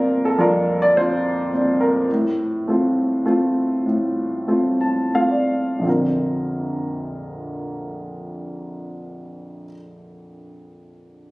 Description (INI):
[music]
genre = folk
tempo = 82-105 BPM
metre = 3/4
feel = straight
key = Bb major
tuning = A4 = 440 Hz
[part]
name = warm upright piano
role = melody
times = 0.0-11.3 s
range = Bb1 to A5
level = -19 LUFS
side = equal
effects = none
[sound]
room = light reverb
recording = recorded on a phone in the room, studio reverb, compression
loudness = -18 LUFS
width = side -22 dB against mid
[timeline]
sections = 0.0-5.9 A section; 5.9-10.3 B section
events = slowing down 2.1-5.9; upright piano fill 4.5-5.9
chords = 0.0 Bbadd9; 2.1 F/A; 5.9 Bbadd9